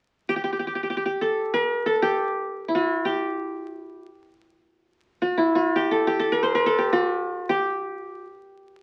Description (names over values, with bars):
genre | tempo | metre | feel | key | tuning
Arabic maqam ensemble | free time | none | none | G maqam rast | A4 = 440 Hz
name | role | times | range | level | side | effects
qanun | solo | 0.3-8.8 s | E4 to C5 | -24 LUFS | equal | none
room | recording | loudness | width
moderate club reverb, RT60 0.8 s | very old 78 rpm record, vinyl crackle | -24 LUFS | mono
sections
0.0-8.8 A section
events
none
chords
none